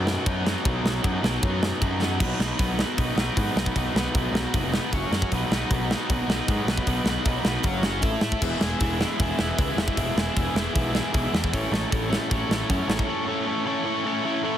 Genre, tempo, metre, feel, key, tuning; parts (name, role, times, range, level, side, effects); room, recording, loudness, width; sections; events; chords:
punk rock; 154 BPM; 4/4; straight; B major; A4 = 440 Hz
distorted electric guitar; riff; 0.0-14.6 s; B2 to E5; -26 LUFS; equal; distortion
fuzz picked electric bass; bass; 0.0-13.0 s; E1 to A2; -28 LUFS; equal; overdrive
tight metal drum kit; drums; 0.1-13.1 s; crash cymbal, hi-hat, kick drum, ride cymbal, snare drum; -26 LUFS; equal
little or no reverb; heavily compressed radio sound; -22 LUFS; side -10 dB against mid
0.0-2.2 A section; 2.2-14.6 B section
drum fill 2.0
0.0 B; 4.9 F#5; 5.3 B; 7.6 F#5; 8.0 A5; 8.4 E; 11.5 A